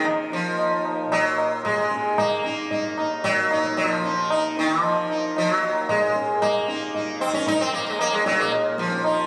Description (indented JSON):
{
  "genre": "indian classical, Hindustani",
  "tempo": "113 BPM",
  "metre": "4/4",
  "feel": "straight",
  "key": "Eb raga kafi",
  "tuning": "A4 = 440 Hz",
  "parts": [
    { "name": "sitar", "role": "melody", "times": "0.0-9.3 s", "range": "F3 to Eb4", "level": "-25 LUFS", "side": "equal", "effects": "none" },
    { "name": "tanpura", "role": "drone", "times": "0.0-9.3 s", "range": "Eb2 to Eb3", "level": "-33 LUFS", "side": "equal", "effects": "none" },
    { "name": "tabla", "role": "percussion", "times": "0.1-9.2 s", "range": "none", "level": "-28 LUFS", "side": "equal", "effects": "none" }
  ],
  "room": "wet scoring stage reverb, RT60 1.8 s",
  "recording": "recorded on a phone in the room, club reverb",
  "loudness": "-23 LUFS",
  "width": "mono",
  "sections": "0.0-9.3 A section",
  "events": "none",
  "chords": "none",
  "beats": "| 0.05 0.59 1.12 1.65 | 2.18 2.71 3.24 3.77 | 4.30 4.83 5.36 5.89 | 6.42 6.94 7.47 7.99 | 8.52 9.04"
}